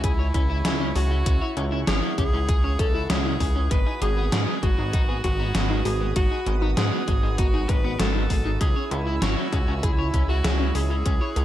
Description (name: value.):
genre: synthwave.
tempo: 98 BPM.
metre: 4/4.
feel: straight.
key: C# minor.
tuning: A4 = 440 Hz.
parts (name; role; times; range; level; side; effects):
edgy tenor saxophone; melody; 0.0-11.4 s; E4 to B4; -32 LUFS; equal; ping-pong delay.
soft synth bell; second line; 0.0-11.4 s; E4 to B4; -34 LUFS; left 1 dB; chorus, ping-pong delay.
chorused pulse-width pad; sustained chords; 0.0-11.4 s; E4 to F#6; -35 LUFS; right 2 dB; sidechain pumping.
wide unison pluck; arpeggios; 0.0-11.4 s; B3 to G#4; -33 LUFS; left 1 dB; ping-pong delay.
electric guitar at the edge of break-up; riff; 0.0-11.4 s; G#3 to C#5; -35 LUFS; left 5 dB; lush chorus, vintage 12-bit sampler grit, ping-pong delay.
chorused synth bass; bass; 0.0-11.4 s; G#1 to G#2; -24 LUFS; equal; sidechain pumping.
electronic kick drum; drums; 0.0-11.2 s; none; -24 LUFS; equal; none.
gated 80s digital drum machine; drums; 0.0-11.4 s; hi-hat, snare drum; -27 LUFS; equal; gated reverb, gated reverb snare, overdrive.
room: light reverb.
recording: dark, warm production.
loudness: -21 LUFS.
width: side -12 dB against mid.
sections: 0.0-11.4 A section.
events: none.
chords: 0.0 C#m; 3.7 G#m7; 8.6 C#m.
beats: 0.04 0.65 | 1.26 1.87 2.49 3.10 | 3.71 4.32 4.93 5.55 | 6.16 6.77 7.38 8.00 | 8.61 9.22 9.83 10.45 | 11.06.